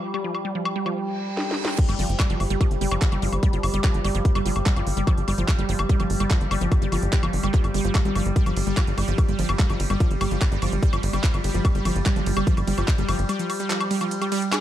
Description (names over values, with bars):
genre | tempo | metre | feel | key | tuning
psychedelic trance | 146 BPM | 4/4 | straight | unclear | A4 = 440 Hz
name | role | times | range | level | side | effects
overtone-sweeping drone | sustained chords | 0.0-14.6 s | G3 | -30 LUFS | left 1 dB | chorus, built-in reverb, sidechain pumping
wide unison pluck | riff | 0.1-14.6 s | F3 to Ab4 | -28 LUFS | moving between left 5 dB and right 7 dB | auto-pan, sidechain pumping, dub echo
garage drum kit | drums | 0.1-14.6 s | crash cymbal, handclaps, hi-hat, ride cymbal, snare drum, woodblock | -29 LUFS | left 1 dB | none
reverse cymbal | sound effects | 1.1-1.8 s | none | -34 LUFS | right 6 dB | none
electronic kick drum | drums | 1.8-13.0 s | none | -22 LUFS | equal | none
tight sequencer bass | bass | 1.9-13.2 s | G1 to Ab1 | -25 LUFS | equal | none
room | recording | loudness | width
digital ambience | dark, warm production, low-pass filter | -20 LUFS | side -12 dB against mid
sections
0.0-1.8 A section; 1.8-14.6 B section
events
filter sweep on synth arpeggio sound 0.0-1.8; filter sweep 0.0-1.8; reverse cymbal 1.1-1.8; drum fill 1.4-1.8; drop 1.8-14.6; break 13.3-14.6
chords
0.0 N.C.; 1.8 Fsus2/G